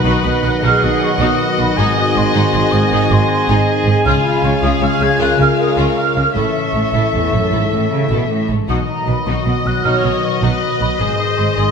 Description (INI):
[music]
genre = cinematic, heroic adventure film score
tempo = 104 BPM (dotted quarters)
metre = 12/8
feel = straight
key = unclear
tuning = A4 = 438 Hz
[part]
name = warm chamber violin section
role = melody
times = 0.0-11.7 s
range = D#5 to E#5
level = -22 LUFS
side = left 6 dB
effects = none
[part]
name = flute section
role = second line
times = 0.0-11.7 s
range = G#5 to G#6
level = -21 LUFS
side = right 2 dB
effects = none
[part]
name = mellow cor anglais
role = second line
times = 0.0-11.7 s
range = D#5 to G#5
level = -24 LUFS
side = right 3 dB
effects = none
[part]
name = warm clarinet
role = second line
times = 0.0-11.7 s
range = F#4 to B4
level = -26 LUFS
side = equal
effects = none
[part]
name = warm symphonic violin section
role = second line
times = 0.0-11.7 s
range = D#4 to D#5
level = -27 LUFS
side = left 2 dB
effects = none
[part]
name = rich symphonic viola section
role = accompaniment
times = 0.0-11.7 s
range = E#4 to D#5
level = -23 LUFS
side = equal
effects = none
[part]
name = dark trombone section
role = sustained chords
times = 0.0-11.7 s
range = C#3 to A3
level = -24 LUFS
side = right 4 dB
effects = none
[part]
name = mellow French horn section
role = sustained chords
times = 0.0-11.7 s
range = G#3 to G#4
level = -24 LUFS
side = left 3 dB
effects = none
[part]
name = concert harp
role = arpeggios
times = 0.0-11.7 s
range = G#2 to B5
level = -23 LUFS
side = left 10 dB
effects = none
[part]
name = rich studio double bass section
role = bass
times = 0.0-11.6 s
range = G#1 to C#2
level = -21 LUFS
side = right 3 dB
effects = none
[part]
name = rich symphonic cello section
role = bass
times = 0.0-11.6 s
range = E2 to C#3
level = -20 LUFS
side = right 3 dB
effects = none
[sound]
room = wet scoring stage reverb, RT60 1.7 s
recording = none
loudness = -13 LUFS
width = side -6 dB against mid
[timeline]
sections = 0.0-11.7 A section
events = none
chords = 0.0 B; 1.8 G#; 4.1 C#; 6.3 A; 8.7 B; 11.0 G#